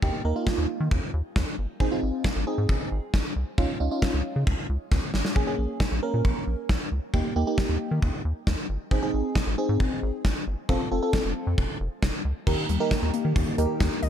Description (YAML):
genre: synth-pop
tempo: 135 BPM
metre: 4/4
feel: straight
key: unclear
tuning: A4 = 440 Hz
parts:
  - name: FM electric piano with soft pad layer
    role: accompaniment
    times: 0.0-14.0 s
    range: Bb3 to Bb4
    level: -29 LUFS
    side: right 1 dB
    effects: chorus, phaser, shimmer reverb
  - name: rubbery square bass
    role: bass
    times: 0.0-14.1 s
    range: F1 to Eb3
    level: -26 LUFS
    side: equal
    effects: none
  - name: gated 80s drum kit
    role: drums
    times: 0.0-14.1 s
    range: crash cymbal, hi-hat, kick drum, snare drum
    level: -26 LUFS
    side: equal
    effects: none
  - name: string machine, cellos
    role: sustained chords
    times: 12.5-14.1 s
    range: Eb3 to G4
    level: -32 LUFS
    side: equal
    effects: ensemble chorus, shimmer reverb
  - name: warbly dusty pluck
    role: arpeggios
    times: 12.5-14.1 s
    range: Eb3 to Eb5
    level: -31 LUFS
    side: left 8 dB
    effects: chorus, slapback echo
room: light reverb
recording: dark, warm production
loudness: -24 LUFS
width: side -9 dB against mid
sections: 0.0-12.5 A section; 12.5-14.1 B section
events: drum fill 4.9-5.4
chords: 0.0 Eb; 1.8 Ab; 3.6 Dbadd9; 5.4 Bbm7; 7.1 Eb; 8.9 Ab; 10.7 F; 12.5 Eb